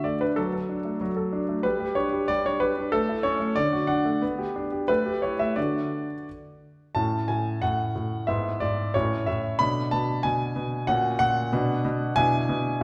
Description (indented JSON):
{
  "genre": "classical-period piano sonatina",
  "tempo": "93 BPM",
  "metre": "2/4",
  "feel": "rubato",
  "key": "D major, A major from 7.0 s",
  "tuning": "A4 = 442 Hz",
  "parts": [
    { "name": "clear concert grand piano", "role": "solo", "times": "0.0-12.8 s", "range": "G#2 to B5", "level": "-26 LUFS", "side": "equal", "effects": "none" }
  ],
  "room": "wet recital hall reverb, RT60 1.5 s",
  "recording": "heard from further back in the room",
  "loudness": "-26 LUFS",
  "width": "mono",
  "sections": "0.0-7.0 A section; 7.0-12.8 B section",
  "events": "none",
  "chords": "0.4 D/F#; 1.6 G5; 2.9 A; 3.6 D; 4.2 G/B; 4.9 A5; 5.6 D; 7.0 A; 8.3 E/G#; 8.9 A; 9.6 Bm; 10.9 F#/A#; 11.5 Bm; 12.2 E7/B"
}